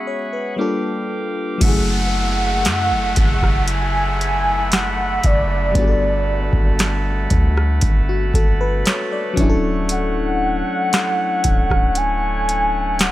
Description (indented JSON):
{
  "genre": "contemporary R&B",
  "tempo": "58 BPM",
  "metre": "4/4",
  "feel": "straight",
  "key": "F# minor",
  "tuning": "A4 = 438 Hz",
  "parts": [
    { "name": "FM electric piano", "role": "accompaniment", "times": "0.0-13.1 s", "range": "C#3 to F#5", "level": "-24 LUFS", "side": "left 3 dB", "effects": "chorus" },
    { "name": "pipe organ, soft reed", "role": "sustained chords", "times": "0.0-13.1 s", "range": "A3 to D6", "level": "-26 LUFS", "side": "right 1 dB", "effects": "none" },
    { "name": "warm velvety synth lead", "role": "melody", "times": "1.6-13.1 s", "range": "D5 to G#5", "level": "-21 LUFS", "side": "equal", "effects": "chorus, tape echo" },
    { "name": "warm 808-style bass", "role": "bass", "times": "1.6-13.1 s", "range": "D1 to F#2", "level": "-21 LUFS", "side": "equal", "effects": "none" },
    { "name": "booming analog drum machine", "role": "drums", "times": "1.6-13.1 s", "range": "crash cymbal, hi-hat, kick drum, rim click, snare drum", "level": "-18 LUFS", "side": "equal", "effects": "none" },
    { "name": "downlifter", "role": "sound effects", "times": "1.6-9.9 s", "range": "none", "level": "-29 LUFS", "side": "right 1 dB", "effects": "none" }
  ],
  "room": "little or no reverb",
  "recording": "none",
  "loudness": "-16 LUFS",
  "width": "side -15 dB against mid",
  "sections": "0.0-1.6 A section; 1.6-13.1 B section",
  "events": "break 0.0-1.6",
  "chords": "0.0 C#7sus4; 0.6 Gm7; 1.6 F#m7; 5.8 Gmaj9; 9.4 Dmaj7",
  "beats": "0.58 | 1.61 2.65 3.68 4.71 | 5.75 6.78 7.82 8.85 | 9.89 10.92 11.96 12.99"
}